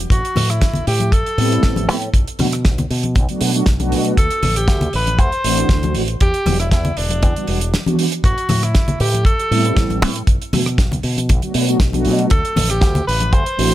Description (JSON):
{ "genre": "nu-disco, nu disco", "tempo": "118 BPM", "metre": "4/4", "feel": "straight", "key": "A dorian", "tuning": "A4 = 443 Hz", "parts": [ { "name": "fingered electric bass with an envelope filter", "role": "bass", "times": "0.0-13.7 s", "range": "E1 to B2", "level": "-20 LUFS", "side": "equal", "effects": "none" }, { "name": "clear tenor saxophone", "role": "melody", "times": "0.1-13.7 s", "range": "D4 to C5", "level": "-22 LUFS", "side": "equal", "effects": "analog delay" }, { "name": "damped 70s drum kit", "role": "drums", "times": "0.1-13.7 s", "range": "hi-hat, rim click, snare drum", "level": "-23 LUFS", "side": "right 3 dB", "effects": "small room ambience" }, { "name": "kick drum", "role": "drums", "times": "0.1-13.4 s", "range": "none", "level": "-15 LUFS", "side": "equal", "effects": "small room ambience" }, { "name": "congas", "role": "percussion", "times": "0.4-13.3 s", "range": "none", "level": "-24 LUFS", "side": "left 2 dB", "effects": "none" }, { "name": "mellow synth brass", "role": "accompaniment", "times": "1.4-13.7 s", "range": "E3 to F#4", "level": "-21 LUFS", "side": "right 1 dB", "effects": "chorus, sidechain pumping" } ], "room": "light reverb, small room ambience", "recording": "none", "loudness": "-14 LUFS", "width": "side -14 dB against mid", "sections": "0.0-13.7 A section", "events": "none", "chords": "0.1 Am7; 2.1 Bm7; 4.2 D7; 6.2 Em7; 8.2 Am7; 10.3 Bm7; 12.3 D7(no3)", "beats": "| 0.11 0.62 1.12 1.63 | 2.14 2.65 3.16 3.67 | 4.18 4.68 5.19 5.70 | 6.21 6.72 7.23 7.74 | 8.24 8.75 9.26 9.77 | 10.28 10.79 11.29 11.80 | 12.31 12.82 13.33" }